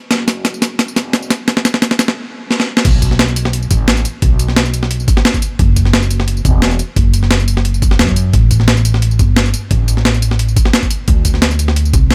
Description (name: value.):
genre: liquid drum and bass.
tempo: 175 BPM.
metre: 4/4.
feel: swing 53% on 16ths.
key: unclear.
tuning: A4 = 440 Hz.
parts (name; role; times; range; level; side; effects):
upright bass; bass; 0.1-12.1 s; E1 to F#2; -17 LUFS; equal; high-pass filter.
breakbeat sampler-style drum kit; drums; 0.1-12.1 s; crash cymbal, hi-hat, snare drum, tambourine; -17 LUFS; equal; studio reverb.
electronic kick drum; drums; 0.1-12.0 s; none; -16 LUFS; equal; high-pass filter on kick, studio reverb.
room: little or no reverb.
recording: none.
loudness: -13 LUFS.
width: mono.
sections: 0.0-2.9 A section; 2.9-12.1 B section.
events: build-up 0.0-2.9; drum fill 0.0-2.2, 2.5-2.9; stop 2.2-2.9; drop 2.9-12.1.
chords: none.